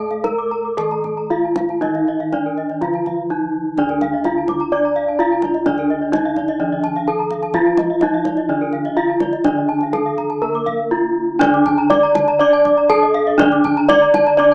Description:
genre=Balinese gamelan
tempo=124 BPM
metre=4/4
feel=uneven beats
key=D pelog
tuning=A4 = 441 Hz
part: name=gamelan-type bronze metallophone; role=melody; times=0.0-14.5 s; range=D4 to D5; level=-15 LUFS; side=equal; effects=none
part: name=gamelan-type bronze metallophone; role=accompaniment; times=0.0-14.5 s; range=D3 to D4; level=-29 LUFS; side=right 1 dB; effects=none
part: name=gamelan-type bronze metallophone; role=arpeggios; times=0.0-14.5 s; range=Bb4-20c to D6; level=-28 LUFS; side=right 1 dB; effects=none
part: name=gamelan-type bossed gongs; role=bass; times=0.0-14.5 s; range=D2 to A4-30c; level=-27 LUFS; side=equal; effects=none
part: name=gamelan-type bronze metallophone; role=arpeggios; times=0.1-14.5 s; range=D5 to D6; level=-22 LUFS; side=left 1 dB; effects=plate reverb
part: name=kendang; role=percussion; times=0.1-14.4 s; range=none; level=-26 LUFS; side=equal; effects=none
room=moderate studio reverb, RT60 0.7 s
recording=rough home demo mix, small speaker sound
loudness=-14 LUFS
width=side -30 dB against mid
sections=0.0-3.8 A section; 3.8-11.4 B section; 11.4-14.5 C section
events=drum fill 3.3-3.8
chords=none

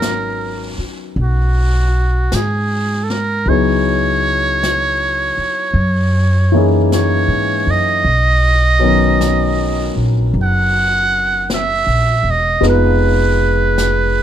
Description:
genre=jazz ballad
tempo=52 BPM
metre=4/4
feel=swing 67% on 8ths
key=unclear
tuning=A4 = 440 Hz
part: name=trumpet with metal mute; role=melody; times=0.0-14.2 s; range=F#4 to F#5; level=-17 LUFS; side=right 3 dB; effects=none
part: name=warm concert grand piano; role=accompaniment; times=0.0-14.2 s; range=D#3 to Cb5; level=-19 LUFS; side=left 3 dB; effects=none
part: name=upright bass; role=bass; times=0.0-14.2 s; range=E1 to G#2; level=-16 LUFS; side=equal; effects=none
part: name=jazz brush drum kit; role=drums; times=0.0-14.2 s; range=brushed snare drum, hi-hat, snare drum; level=-27 LUFS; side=left 3 dB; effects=none
room=little or no reverb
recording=none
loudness=-12 LUFS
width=side -10 dB against mid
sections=0.0-14.2 A section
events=none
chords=0.0 G#m11; 3.5 C#m11; 5.8 F#13; 8.0 Bmaj9; 12.6 Fm7b5

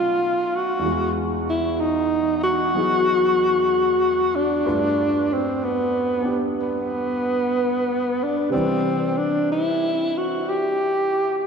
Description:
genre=jazz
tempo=62 BPM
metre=4/4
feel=swing 66% on 8ths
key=unclear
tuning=A4 = 441 Hz
part: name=breathy tenor saxophone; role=melody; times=0.0-11.5 s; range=B3 to G4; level=-20 LUFS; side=equal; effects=none
part: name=warm concert grand piano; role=accompaniment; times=0.0-11.5 s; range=E2 to D5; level=-28 LUFS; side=equal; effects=none
room=wet cathedral reverb, RT60 4.8 s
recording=in a vast, echoing space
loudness=-19 LUFS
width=side -6 dB against mid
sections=0.0-11.5 A section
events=none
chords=0.0 B7; 0.8 Eadd9; 4.6 G7; 8.5 Cmaj7

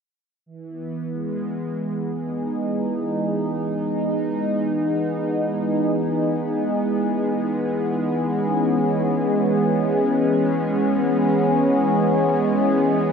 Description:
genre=ambient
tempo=free time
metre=none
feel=none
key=E major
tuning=A4 = 435 Hz
part: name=warm analog pad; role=solo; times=0.5-13.1 s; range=E3 to G#4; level=-19 LUFS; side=equal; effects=chorus, ping-pong delay
room=wet cathedral reverb, RT60 6.5 s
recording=none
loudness=-19 LUFS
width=side -6 dB against mid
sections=0.5-13.1 A section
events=none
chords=0.5 Emaj7

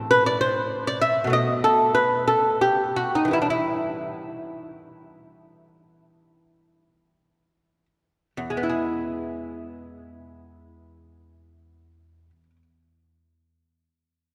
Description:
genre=classical, baroque-style dance for lute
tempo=40-66 BPM (dotted quarters)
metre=12/8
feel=rubato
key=unclear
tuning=A4 = 440 Hz
part: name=lute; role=solo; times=0.0-12.6 s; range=E2 to E5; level=-23 LUFS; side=equal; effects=none
room=wet church reverb, RT60 3.3 s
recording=recorded in a church or concert hall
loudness=-23 LUFS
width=mono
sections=0.0-8.4 A section; 8.4-14.0 B section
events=slowing down 0.7-8.4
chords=0.0 Am; 1.3 B7b13; 3.3 Em; 8.4 E

